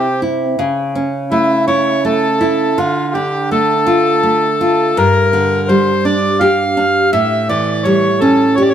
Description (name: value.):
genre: romantic duo for bandoneon and classical guitar.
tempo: 83 BPM.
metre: 3/4.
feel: rubato.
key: unclear.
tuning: A4 = 440 Hz.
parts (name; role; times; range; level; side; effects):
bandoneon; melody; 0.0-8.7 s; E4 to F5; -14 LUFS; equal; none.
nylon-string guitar; accompaniment; 0.0-8.7 s; G2 to G4; -14 LUFS; right 1 dB; none.
room: light reverb.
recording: none.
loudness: -12 LUFS.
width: side -9 dB against mid.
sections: 0.0-8.7 A section.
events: none.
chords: 0.0 C; 0.6 A/C#; 2.8 Dm; 5.0 Gm; 7.1 A7.